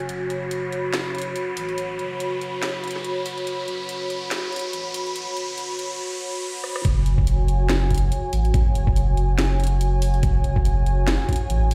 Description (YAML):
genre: deep dubstep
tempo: 142 BPM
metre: 4/4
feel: swing 56% on 16ths, half-time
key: F# minor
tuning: A4 = 435 Hz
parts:
  - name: dark analog pad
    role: sustained chords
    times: 0.0-11.7 s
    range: F#4 to B5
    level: -31 LUFS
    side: equal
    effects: chorus
  - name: saturated sub bass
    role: bass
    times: 0.0-11.7 s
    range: F#1 to A1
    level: -25 LUFS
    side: equal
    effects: none
  - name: garage drum kit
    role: drums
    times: 0.0-11.7 s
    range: hi-hat, rim click, snare drum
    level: -31 LUFS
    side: equal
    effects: high-pass filter on hats, high-pass filter on snare
  - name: riser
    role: sound effects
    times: 0.0-6.8 s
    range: none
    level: -34 LUFS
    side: equal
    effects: none
  - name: electronic kick drum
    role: drums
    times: 6.8-11.4 s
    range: none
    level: -24 LUFS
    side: equal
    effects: none
room: light reverb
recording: played on a big sound system in a bare room, large studio reverb, high-pass filter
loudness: -23 LUFS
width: mono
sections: 0.0-6.8 A section; 6.8-11.7 B section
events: build-up 0.0-6.8; riser 0.0-6.8; filter sweep 0.0-6.8; drum fill 6.6; drop 6.8-11.7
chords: 0.0 F#m